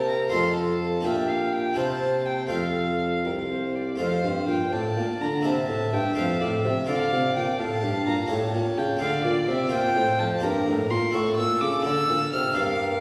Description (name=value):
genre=classical, baroque-style sonata movement with continuo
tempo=84 BPM (dotted quarters)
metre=6/8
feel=straight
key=F major, D minor from 9.7 s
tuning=A4 = 439 Hz
part: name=warm violin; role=melody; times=0.0-13.0 s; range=D5 to F6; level=-31 LUFS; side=equal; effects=none
part: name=rich violin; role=second line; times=0.0-13.0 s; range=G4 to F5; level=-35 LUFS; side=equal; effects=none
part: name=harpsichord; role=accompaniment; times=0.0-13.0 s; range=C2 to D5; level=-31 LUFS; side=equal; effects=none
part: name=mellow bassoon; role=bass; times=0.0-13.0 s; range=C2 to D3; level=-29 LUFS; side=equal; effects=none
room=wet recital hall reverb, RT60 1.6 s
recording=heard from further back in the room, small room ambience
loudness=-25 LUFS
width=mono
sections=0.0-4.0 A section; 4.0-13.0 B section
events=none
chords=0.3 F; 1.1 Gm/Bb; 1.8 C7; 2.5 F; 5.4 C7; 6.2 F; 6.9 Dm; 8.3 A7; 9.0 Dm; 9.7 Bb; 10.4 Gm; 11.1 A; 11.9 D5